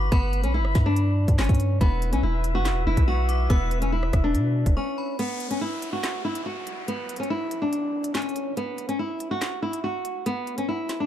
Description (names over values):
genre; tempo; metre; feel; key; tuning
hip hop, drill; 142 BPM; 4/4; half-time; unclear; A4 = 439 Hz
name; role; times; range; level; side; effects
flamenco guitar; melody; 0.0-11.1 s; B3 to F#4; -27 LUFS; equal; low-pass filter
metallic FM bell; second line; 0.0-5.2 s; B5 to E6; -38 LUFS; left 3 dB; chorus, tape echo
flute section; sustained chords; 0.0-5.2 s; E4 to B5; -34 LUFS; left 6 dB; none
long sustained 808-style bass; bass; 0.0-4.8 s; E1 to B2; -23 LUFS; equal; none
drill drum kit; drums; 0.1-11.0 s; handclaps, hi-hat, kick drum, rim click, snare drum; -24 LUFS; equal; none
downlifter; sound effects; 5.2-8.6 s; none; -38 LUFS; left 1 dB; none
room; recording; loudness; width
digital ambience; dark, warm production; -22 LUFS; side -11 dB against mid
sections
0.0-5.2 A section; 5.2-11.1 B section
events
break 4.8-5.2, 5.2-11.1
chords
0.0 G; 1.8 E5; 5.2 N.C.